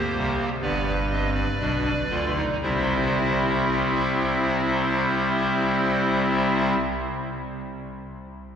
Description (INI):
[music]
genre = classical, baroque-style 4-part fugue for pipe organ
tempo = 57-65 BPM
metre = 4/4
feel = straight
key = unclear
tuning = A4 = 442 Hz
[part]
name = pipe organ, clarinet reed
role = solo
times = 0.0-6.8 s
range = G1 to E5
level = -22 LUFS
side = equal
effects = none
[sound]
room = wet cathedral reverb, RT60 4.8 s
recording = heard from further back in the room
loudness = -21 LUFS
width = side -8 dB against mid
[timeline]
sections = 0.0-2.6 A section; 2.6-6.8 B section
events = slowing down 0.0-2.6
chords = 0.0 C5; 0.6 G; 2.6 C